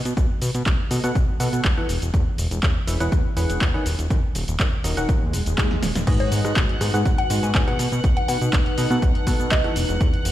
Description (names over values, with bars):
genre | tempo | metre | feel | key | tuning
piano house | 122 BPM | 4/4 | straight | G# minor | A4 = 440 Hz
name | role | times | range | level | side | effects
fat analog bass | bass | 0.1-10.3 s | D#1 to B2 | -24 LUFS | equal | sidechain pumping
punchy analog drum machine | drums | 0.1-10.3 s | cabasa, crash cymbal, handclaps, hi-hat, rim click, snare drum | -28 LUFS | equal | none
electronic kick drum | drums | 0.2-10.1 s | none | -21 LUFS | equal | none
barking FM electric piano | riff | 0.9-9.7 s | G#2 to F#5 | -27 LUFS | left 1 dB | chorus, sidechain pumping, ping-pong delay
swell | sound effects | 5.2-6.1 s | none | -31 LUFS | right 2 dB | none
rich studio violin section | sustained chords | 6.1-10.3 s | F#5 to F#6 | -32 LUFS | right 1 dB | sidechain pumping
warbly tape-like pad | texture | 6.5-10.3 s | D#4 to A5 | -31 LUFS | left 2 dB | chorus, built-in reverb, sidechain pumping
mallet-like synth pluck | melody | 6.2-9.8 s | C#5 to G#5 | -30 LUFS | left 2 dB | chorus, phaser, ping-pong delay
room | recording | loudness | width
little or no reverb | played on a big sound system in a bare room, large studio reverb | -19 LUFS | side -13 dB against mid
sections
0.0-6.1 A section; 6.1-10.3 B section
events
swell 5.2-6.1; drum fill 5.7-6.1; drop 6.1-10.3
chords
0.0 B7(no3); 1.9 E6; 3.9 D#m; 6.1 G#m7; 7.8 B7; 9.8 E5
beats
| 0.17 0.66 1.15 1.65 | 2.14 2.63 3.12 3.61 | 4.10 4.60 5.09 5.58 | 6.07 6.56 7.05 7.55 | 8.04 8.53 9.02 9.51 | 10.01